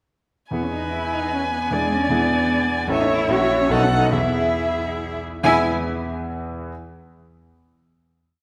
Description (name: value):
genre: quick classical-period movement for piano quartet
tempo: 138-154 BPM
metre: 3/4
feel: rubato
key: E major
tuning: A4 = 442 Hz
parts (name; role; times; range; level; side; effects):
- warm violin; melody; 0.5-5.7 s; E5 to G#5; -26 LUFS; equal; none
- warm cello; second line; 0.5-5.7 s; G#3 to F#4; -27 LUFS; equal; none
- clear concert grand piano; accompaniment; 0.5-6.7 s; A1 to E5; -26 LUFS; equal; none
- rich viola; accompaniment; 0.5-5.7 s; E4 to D5; -28 LUFS; equal; none
room: wet concert hall reverb, RT60 1.8 s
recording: none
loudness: -21 LUFS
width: mono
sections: 0.5-5.4 theme; 5.4-6.7 final chord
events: none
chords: 0.5 E; 1.7 E7; 2.9 A; 3.3 F#7/A#; 3.7 B7; 4.1 E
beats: | 0.53 0.93 1.32 | 1.72 2.12 2.51 | 2.90 3.30 3.72 | 4.14 4.58 5.01 | 5.44 5.86 6.28